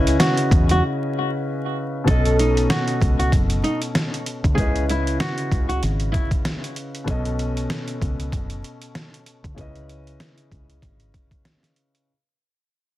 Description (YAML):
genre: hip hop, boom-bap hip-hop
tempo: 96 BPM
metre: 4/4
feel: swing 57% on 16ths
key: unclear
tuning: A4 = 440 Hz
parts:
  - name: flamenco guitar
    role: melody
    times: 0.0-6.3 s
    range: D#4 to A4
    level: -25 LUFS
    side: right 1 dB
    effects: high-pass filter, low-pass filter, plate reverb, ping-pong delay
  - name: dark baby grand piano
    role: accompaniment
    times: 0.0-12.1 s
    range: B2 to D#5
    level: -25 LUFS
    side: left 1 dB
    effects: cassette tape, high-pass filter, low-pass filter, plate reverb
  - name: deep dub fingered electric bass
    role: bass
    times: 0.0-11.1 s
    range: F#1 to E2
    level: -22 LUFS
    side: equal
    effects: none
  - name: trip hop sampler-style drum kit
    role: drums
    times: 0.1-12.1 s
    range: hi-hat, kick drum, snare drum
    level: -22 LUFS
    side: equal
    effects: none
room: light reverb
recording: dense, heavily limited modern master, vinyl crackle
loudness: -19 LUFS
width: side -15 dB against mid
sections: 0.0-2.1 A section; 2.1-12.1 B section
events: break 0.8-2.1, 7.1-12.1; fade-out 2.1-12.1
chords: 0.0 C#m7; 2.1 B7; 4.6 C#m7; 7.1 B7; 9.6 C#m7